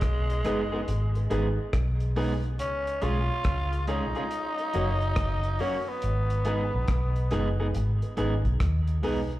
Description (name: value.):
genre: roots reggae.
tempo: 70 BPM.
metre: 4/4.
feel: swing 64% on 16ths.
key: unclear.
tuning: A4 = 441 Hz.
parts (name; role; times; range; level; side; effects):
raspy tenor saxophone; melody; 0.0-7.6 s; Ab3 to F4; -32 LUFS; equal; tape echo, slapback echo.
vintage muted fingered electric bass; bass; 0.0-9.4 s; Gb1 to Eb2; -27 LUFS; equal; none.
cloth-damped thuddy drum kit; drums; 0.0-9.4 s; hi-hat, kick drum, rim click; -30 LUFS; equal; none.
electric guitar at the edge of break-up; accompaniment; 0.4-9.2 s; Gb3 to Ab4; -34 LUFS; right 2 dB; tape echo, slapback echo.
dark upright piano; stabs; 0.4-9.3 s; Eb4 to Db5; -35 LUFS; left 1 dB; slapback echo.
room: light reverb, small room ambience.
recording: live gig heard through the venue's PA, club reverb.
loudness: -25 LUFS.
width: side -16 dB against mid.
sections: 0.0-9.4 A section.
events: none.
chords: 0.0 Abm; 2.6 Db; 4.3 Gb; 6.0 Abm.